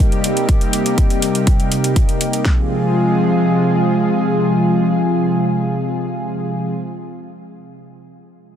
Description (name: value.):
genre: progressive house.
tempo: 122 BPM.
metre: 4/4.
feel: straight.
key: F minor.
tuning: A4 = 440 Hz.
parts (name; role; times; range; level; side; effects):
lush unison pad; sustained chords; 0.0-6.7 s; C3 to Ab4; -16 LUFS; equal; chorus, sidechain pumping.
pop drum kit; drums; 0.0-2.6 s; kick drum, snare drum; -15 LUFS; equal; none.
electronic hi-hat; drums; 0.1-2.4 s; none; -23 LUFS; equal; none.
room: moderate huge ambient reverb, RT60 6.6 s.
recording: dense, heavily limited modern master.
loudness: -14 LUFS.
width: side -9 dB against mid.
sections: 0.0-2.5 A section; 2.5-6.4 B section.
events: none.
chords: 0.0 Cm7; 2.5 Fm.